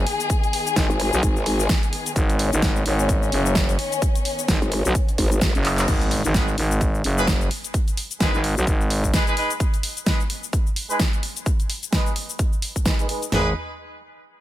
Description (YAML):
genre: bass house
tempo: 129 BPM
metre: 4/4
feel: swing 58% on 16ths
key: G# minor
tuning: A4 = 440 Hz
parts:
  - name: warm studio string section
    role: sustained chords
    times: 0.0-5.9 s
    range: D#3 to G#4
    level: -27 LUFS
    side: left 4 dB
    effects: sidechain pumping, low-pass filter
  - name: growling FM bass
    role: bass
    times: 0.0-9.1, 13.3-13.5 s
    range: F#1 to B1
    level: -21 LUFS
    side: equal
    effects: overdrive, sidechain pumping
  - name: big-room dance drum kit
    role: drums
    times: 0.1-13.3 s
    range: crash cymbal, handclaps, hi-hat, shaker, snare drum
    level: -25 LUFS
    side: equal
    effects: studio reverb
  - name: big-room dance drum kit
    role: drums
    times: 0.3-13.4 s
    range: kick drum, snare drum, toms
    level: -22 LUFS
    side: equal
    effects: studio reverb
  - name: growl bass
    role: bass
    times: 0.9-1.7, 4.6-5.5 s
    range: G#1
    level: -22 LUFS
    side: equal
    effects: chorus, tube saturation, sidechain pumping
  - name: impact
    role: sound effects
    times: 5.9-7.7 s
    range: none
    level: -33 LUFS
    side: equal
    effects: none
  - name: clear horn section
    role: stabs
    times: 6.3-13.5 s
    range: G#3 to B4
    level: -28 LUFS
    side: right 1 dB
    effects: sidechain pumping, low-pass filter, dub echo
room: little or no reverb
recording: none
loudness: -19 LUFS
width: side -14 dB against mid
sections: 0.0-5.9 A section; 5.9-13.3 B section; 13.3-14.4 C section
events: drop 0.0-5.9; drum fill 5.6; band accent 5.8; impact 5.9-7.7; filter sweep on horn section 5.9-13.3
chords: 0.0 G#m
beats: | 0.30 0.76 1.23 1.69 | 2.16 2.62 3.09 3.56 | 4.02 4.49 4.95 5.42 | 5.88 6.34 6.81 7.28 | 7.74 8.21 8.67 9.14 | 9.60 10.07 10.53 11.00 | 11.46 11.93 12.39 12.86 | 13.32